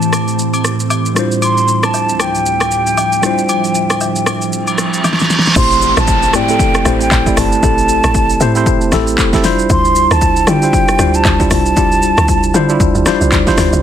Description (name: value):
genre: amapiano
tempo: 116 BPM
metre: 4/4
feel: swing 58% on 16ths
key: D minor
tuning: A4 = 440 Hz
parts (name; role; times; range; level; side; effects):
- mellow hollow silver concert flute; melody; 0.0-13.0 s; G5 to C6; -16 LUFS; right 1 dB; low-pass filter
- mellow tine electric piano; accompaniment; 0.0-13.8 s; G3 to D5; -16 LUFS; left 1 dB; medium stereo tremolo, low-pass filter
- ethereal airy pad; sustained chords; 0.0-5.5 s; D2 to E5; -19 LUFS; right 2 dB; ensemble chorus, built-in reverb, phaser, low-pass filter
- deep house drum kit; drums; 0.0-13.8 s; crash cymbal, handclaps, hi-hat, kick drum, rim click, shaker, snare drum; -16 LUFS; equal; overdrive
- agogo bells and woodblock; percussion; 0.1-5.2 s; none; -23 LUFS; left 4 dB; none
- reverse cymbal and downlifter; sound effects; 4.7-9.7 s; none; -19 LUFS; right 1 dB; none
- woody log drum bass; bass; 5.6-13.8 s; G1 to D3; -16 LUFS; equal; none
room: light reverb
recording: dense, heavily limited modern master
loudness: -10 LUFS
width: side -10 dB against mid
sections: 0.0-5.6 A section; 5.6-13.8 B section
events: reverse cymbal 4.7-5.6; drum fill 5.0-5.6; drop 5.6-13.8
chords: 0.0 Am7; 1.2 Dm11; 5.6 Am7; 9.4 Dm11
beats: 0.39 0.91 | 1.42 1.94 2.46 2.98 | 3.49 4.01 4.53 5.04 | 5.56 6.08 6.59 7.11 | 7.63 8.15 8.66 9.18 | 9.70 10.22 10.73 11.25 | 11.77 12.29 12.80 13.32